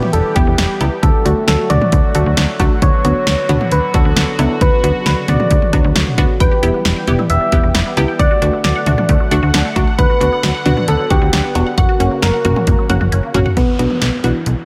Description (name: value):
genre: synth-pop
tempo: 134 BPM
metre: 4/4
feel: straight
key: B minor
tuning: A4 = 440 Hz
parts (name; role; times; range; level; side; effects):
- soft struck synth lead; melody; 0.0-14.7 s; E3 to E5; -21 LUFS; equal; chorus, shimmer reverb
- unison pluck; accompaniment; 0.0-14.4 s; A3 to G4; -23 LUFS; equal; shimmer reverb
- sweeping resonant pad; sustained chords; 0.0-13.6 s; C#3 to F#5; -26 LUFS; equal; chorus, shimmer reverb
- punchy analog drum machine; drums; 0.0-14.6 s; cowbell, hi-hat, kick drum, snare drum, toms; -18 LUFS; equal; none
- slap-like FM bass; bass; 0.1-14.5 s; E1 to D2; -19 LUFS; equal; none
- resonant blip pluck; arpeggios; 6.4-13.5 s; F#3 to G5; -27 LUFS; equal; phaser, tape echo, shimmer reverb
- downlifter; sound effects; 13.6-14.7 s; none; -31 LUFS; equal; none
room: light reverb, digital ambience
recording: none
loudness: -14 LUFS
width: mono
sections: 0.0-13.6 A section; 13.6-14.7 B section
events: drum fill 12.7-13.6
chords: 0.0 Em; 1.0 D; 2.8 Bm; 6.4 Em; 8.2 D; 10.0 Bm/D; 11.8 F#; 13.6 Bm